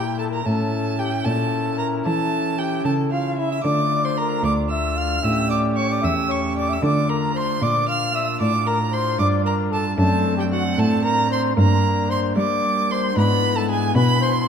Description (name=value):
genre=classical, baroque-style sonata movement with continuo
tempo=76 BPM (dotted quarters)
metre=12/8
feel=straight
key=D minor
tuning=A4 = 440 Hz
part: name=mellow trumpet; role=melody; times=0.0-14.3 s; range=E4 to F5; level=-26 LUFS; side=left 7 dB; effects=none
part: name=clear violin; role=second line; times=0.0-14.5 s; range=E5 to F6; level=-24 LUFS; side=right 4 dB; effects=none
part: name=pipe organ, foundations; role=accompaniment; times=0.0-14.5 s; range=D2 to G4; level=-23 LUFS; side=equal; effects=none
part: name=rich cello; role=bass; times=0.0-14.5 s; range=D2 to G3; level=-23 LUFS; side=right 1 dB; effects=none
room=wet concert hall reverb, RT60 2.0 s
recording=dark, warm production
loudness=-18 LUFS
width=side -7 dB against mid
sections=0.0-14.5 A section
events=none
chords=0.5 A; 3.6 Dm; 5.2 A7; 6.8 Dm; 10.0 D7/F#; 11.6 Gm; 13.2 E7/G#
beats=| 0.46 1.26 2.06 2.85 | 3.65 4.44 5.24 6.04 | 6.83 7.62 8.41 9.20 | 9.99 10.78 11.58 12.37 | 13.17 13.96